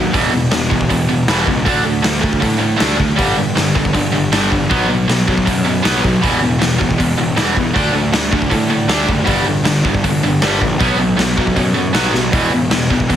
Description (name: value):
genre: punk rock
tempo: 157 BPM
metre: 4/4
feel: straight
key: unclear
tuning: A4 = 440 Hz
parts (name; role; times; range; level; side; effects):
- tight distorted guitar; riff; 0.0-13.2 s; E2 to D4; -15 LUFS; equal; distortion
- fuzz picked electric bass; bass; 0.0-13.2 s; E1 to A2; -20 LUFS; equal; overdrive
- raw garage drum kit; drums; 0.1-13.2 s; hi-hat, kick drum, snare drum; -18 LUFS; equal; none
room: light reverb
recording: heavily compressed radio sound, multiband compression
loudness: -12 LUFS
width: side -10 dB against mid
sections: 0.0-13.2 A section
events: drum fill 12.1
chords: 0.1 E5; 1.7 D5; 3.2 G5; 4.7 B5; 6.2 E5; 7.8 D5; 9.3 G5; 10.8 B5; 12.3 E5